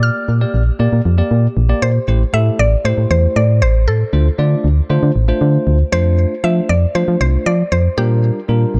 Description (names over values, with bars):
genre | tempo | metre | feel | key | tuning
dance-pop | 117 BPM | 4/4 | straight | unclear | A4 = 440 Hz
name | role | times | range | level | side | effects
mallet-like synth pluck | melody | 0.0-8.8 s | G4 to F6 | -23 LUFS | equal | chorus, delay
bell-like tine electric piano | accompaniment | 0.0-8.8 s | G3 to D5 | -24 LUFS | equal | none
solid FM bass | bass | 0.0-8.8 s | A1 to F3 | -16 LUFS | equal | none
room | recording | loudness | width
light reverb | dark, warm production | -15 LUFS | mono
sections
0.0-2.1 A section; 2.1-8.8 B section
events
none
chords
0.0 Bb6; 2.1 Am7; 4.1 Dm7; 5.9 F6; 8.0 Bb6